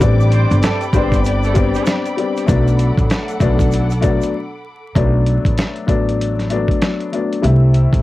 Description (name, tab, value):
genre	hip hop, boom-bap hip-hop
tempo	97 BPM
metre	4/4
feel	swing 62% on 16ths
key	unclear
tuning	A4 = 440 Hz
part	dark upright piano	accompaniment	0.0-8.0 s	C3 to B4	-19 LUFS	left 4 dB	high-pass filter, low-pass filter
part	dark studio string section	sustained chords	0.0-4.9 s	A4 to D6	-26 LUFS	equal	high-pass filter, low-pass filter
part	upright bass	bass	0.0-8.0 s	G1 to C2	-15 LUFS	equal	none
part	dusty soul sampler-style drum kit	drums	0.0-8.0 s	hi-hat, kick drum, snare drum	-18 LUFS	equal	cassette tape
part	egg shaker	percussion	0.0-4.3 s	none	-42 LUFS	right 10 dB	none
part	clear horn section	stabs	0.3-1.8 s	G3 to C5	-28 LUFS	right 8 dB	high-pass filter, low-pass filter, tape echo
room	little or no reverb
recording	home recording on cassette, vinyl crackle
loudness	-13 LUFS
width	side -17 dB against mid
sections	0.0-5.0 A section; 5.0-8.0 B section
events	break 4.3-5.0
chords	0.0 Am11; 2.5 Bm7; 7.4 Am7